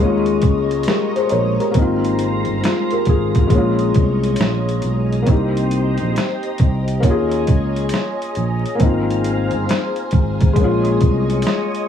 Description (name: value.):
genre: lo-fi hip hop.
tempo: 68 BPM.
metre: 4/4.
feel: swing 65% on 16ths.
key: unclear.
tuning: A4 = 440 Hz.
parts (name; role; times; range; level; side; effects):
felt-muted upright piano; accompaniment; 0.0-11.9 s; Ab3 to Db5; -19 LUFS; left 3 dB; cassette tape, low-pass filter, plate reverb.
ensemble organ-string; sustained chords; 0.0-11.9 s; Ab3 to Bb5; -25 LUFS; equal; ensemble chorus, low-pass filter.
fingered electric bass; bass; 0.0-11.4 s; G1 to Eb2; -20 LUFS; right 1 dB; none.
boom bap sampler-style drum kit; drums; 0.3-11.9 s; hi-hat, kick drum, snare drum; -17 LUFS; equal; none.
room: light reverb.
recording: vinyl crackle.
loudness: -15 LUFS.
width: side -8 dB against mid.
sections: 0.0-11.9 A section.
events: none.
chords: 0.0 Eb7sus4; 1.7 Ab69; 3.5 Eb7sus4/Bb; 5.3 Cm7; 7.0 Eb7sus4; 8.8 Ab69; 10.6 Eb7sus4/Bb.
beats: 0.86 | 1.74 2.63 3.51 4.39 | 5.27 6.16 7.04 7.92 | 8.80 9.69 10.57 11.45.